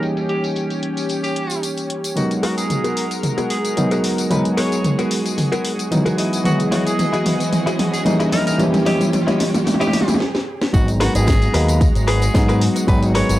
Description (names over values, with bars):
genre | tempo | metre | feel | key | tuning
nu-disco, nu disco | 112 BPM | 4/4 | swing 54% on 16ths | G# minor | A4 = 442 Hz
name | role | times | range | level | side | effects
bright tenor saxophone | melody | 0.0-13.4 s | F#4 to C#5 | -26 LUFS | equal | low-pass filter, cassette tape, tape echo
barky reed electric piano | accompaniment | 0.0-13.4 s | E3 to D#5 | -21 LUFS | equal | overdrive, vintage 12-bit sampler grit, sidechain pumping, cassette tape
lush unison pad | sustained chords | 0.0-13.4 s | E3 to A#5 | -25 LUFS | equal | chorus, sidechain pumping, cassette tape
house drum kit | drums | 0.0-13.4 s | hi-hat, snare drum, tambourine, toms | -22 LUFS | equal | cassette tape
tambourine | percussion | 0.0-2.1, 10.7-13.4 s | none | -35 LUFS | right 5 dB | none
riser | sound effects | 4.1-10.2 s | none | -31 LUFS | right 2 dB | none
direct-recorded clean electric guitar | riff | 2.4-13.4 s | B3 to D#5 | -24 LUFS | left 2 dB | lush chorus, low-pass filter, cassette tape
picked electric bass with an envelope filter | bass | 10.7-13.4 s | G#1 to G#2 | -18 LUFS | equal | sidechain pumping
electronic kick drum | drums | 10.7-13.0 s | none | -16 LUFS | equal | cassette tape
room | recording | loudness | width
wet booth ambience, RT60 0.2 s | home recording on cassette, low-pass filter | -16 LUFS | side -15 dB against mid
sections
0.0-2.2 A section; 2.2-10.7 B section; 10.7-13.4 C section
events
filter sweep 0.0-2.2; build-up 2.2-10.7; drum fill 2.2-10.2, 10.2-10.7; filter sweep on clean electric guitar 2.2-10.7; stop 10.2-10.7; drop 10.7-13.4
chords
0.0 D#7b9; 2.2 G#m9; 6.2 Emaj9; 8.3 D#7b9; 10.7 G#m9